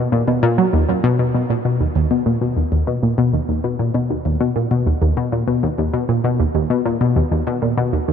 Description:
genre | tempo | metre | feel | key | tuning
ambient | 98 BPM | 4/4 | straight | B major | A4 = 440 Hz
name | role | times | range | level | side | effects
tight sequenced synth | solo | 0.0-8.1 s | D#2 to F#3 | -16 LUFS | left 1 dB | chorus, cassette tape, ping-pong delay
room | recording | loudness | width
moderate huge ambient reverb, RT60 7.9 s | none | -16 LUFS | side -8 dB against mid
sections
0.0-1.3 A section; 1.3-8.1 B section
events
none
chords
none

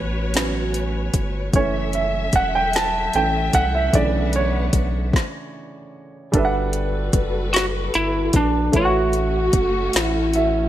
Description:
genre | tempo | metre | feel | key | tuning
slow six-eight R&B | 50 BPM (dotted quarters) | 6/8 | straight | unclear | A4 = 440 Hz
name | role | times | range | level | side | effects
warm concert grand piano | accompaniment | 0.0-10.7 s | C#3 to A5 | -23 LUFS | right 3 dB | none
warm studio string section | sustained chords | 0.0-10.7 s | F#3 to F#5 | -28 LUFS | left 2 dB | none
round analog bass | bass | 0.0-10.7 s | E1 to C2 | -24 LUFS | equal | none
smooth R&B drum kit | drums | 0.3-10.5 s | hi-hat, kick drum, snare drum | -21 LUFS | equal | none
lightly driven lead guitar | melody | 7.5-10.7 s | D4 to F#4 | -20 LUFS | equal | none
room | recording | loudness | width
light reverb, digital ambience | none | -18 LUFS | side -12 dB against mid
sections
0.0-6.3 A section; 6.3-10.7 B section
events
grand piano solo 0.0-6.3; stop 5.1-6.3; grand piano fill 9.9-10.7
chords
0.0 A69; 1.5 F#m7; 3.9 Bm11; 6.3 Gmaj9; 8.7 A69

